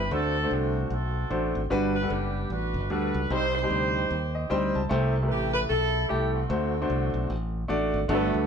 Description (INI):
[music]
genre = uptempo gospel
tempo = 150 BPM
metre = 4/4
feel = swing 61% on 8ths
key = unclear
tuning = A4 = 440 Hz
[part]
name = warm horn section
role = melody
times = 0.0-8.5 s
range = D3 to C5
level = -30 LUFS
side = right 1 dB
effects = none
[part]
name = modern bright fingered electric bass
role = bass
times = 0.0-8.5 s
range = F#1 to Eb2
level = -29 LUFS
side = equal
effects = none
[part]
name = clear baby grand piano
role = accompaniment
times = 0.1-8.5 s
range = G2 to A5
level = -27 LUFS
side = equal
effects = none
[sound]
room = moderate studio reverb, RT60 0.7 s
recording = band playing live in one room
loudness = -24 LUFS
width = side -7 dB against mid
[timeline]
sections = 0.0-8.1 A section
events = grand piano fill 4.1-4.9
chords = 0.1 D7; 1.7 Gmaj7; 3.3 Cm; 4.9 C6; 6.5 D7